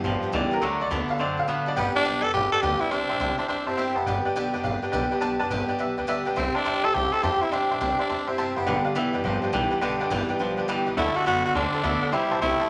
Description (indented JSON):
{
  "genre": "rockabilly",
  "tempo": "208 BPM",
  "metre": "4/4",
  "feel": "swing 64% on 8ths",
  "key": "G major",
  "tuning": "A4 = 437 Hz",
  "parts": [
    { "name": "picked swing-style acoustic guitar", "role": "accompaniment", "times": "0.0-12.7 s", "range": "G2 to A4", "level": "-30 LUFS", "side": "equal", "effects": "none" },
    { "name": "twangy electric guitar", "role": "riff", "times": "0.0-1.8, 8.7-12.7 s", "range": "G2 to C4", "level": "-31 LUFS", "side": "equal", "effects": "none" },
    { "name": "upright bass", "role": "bass", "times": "0.0-12.6 s", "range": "F1 to A2", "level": "-36 LUFS", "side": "equal", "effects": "none" },
    { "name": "tack piano", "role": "accompaniment", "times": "0.3-12.7 s", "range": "F#3 to A5", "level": "-32 LUFS", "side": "equal", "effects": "none" },
    { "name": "growling tenor saxophone", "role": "melody", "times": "1.8-4.2, 6.4-8.8, 11.0-12.7 s", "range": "B3 to A4", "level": "-27 LUFS", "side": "equal", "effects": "none" }
  ],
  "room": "moderate large studio reverb, RT60 0.8 s",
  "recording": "none",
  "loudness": "-25 LUFS",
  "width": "mono",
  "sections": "0.0-1.8 A section; 1.8-12.7 B section",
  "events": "honky-tonk piano solo 0.0-1.8",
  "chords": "0.0 G; 0.6 D; 1.8 G; 2.9 C; 4.1 G; 6.4 C; 8.7 G; 11.0 D; 12.1 C"
}